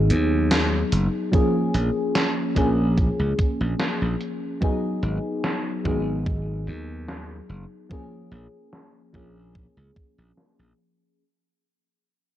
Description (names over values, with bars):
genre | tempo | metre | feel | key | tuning
vaporwave | 73 BPM | 4/4 | swing 54% on 16ths | unclear | A4 = 441 Hz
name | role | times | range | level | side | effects
mellow FM electric piano | accompaniment | 0.0-11.2 s | E#3 to G#4 | -25 LUFS | left 1 dB | lush chorus, analog delay
slap bass | bass | 0.0-10.7 s | F#1 to D#2 | -24 LUFS | equal | transformer saturation
gated 80s digital drum machine | drums | 0.1-11.0 s | hi-hat, snare drum | -26 LUFS | equal | gated reverb, gated reverb snare, low-pass filter on hats, low-pass filter on perc, low-pass filter on snare, low-pass filter on room
electronic kick drum | drums | 1.3-10.1 s | none | -23 LUFS | equal | none
room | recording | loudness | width
light reverb | dry, gritty hardware recording, cassette tape | -21 LUFS | side -12 dB against mid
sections
0.0-11.2 A section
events
fade-out 0.0-11.2; filter sweep on drum 0.0-11.2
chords
0.0 G#m7; 1.3 A#m7; 4.6 G#m7; 7.9 A#m7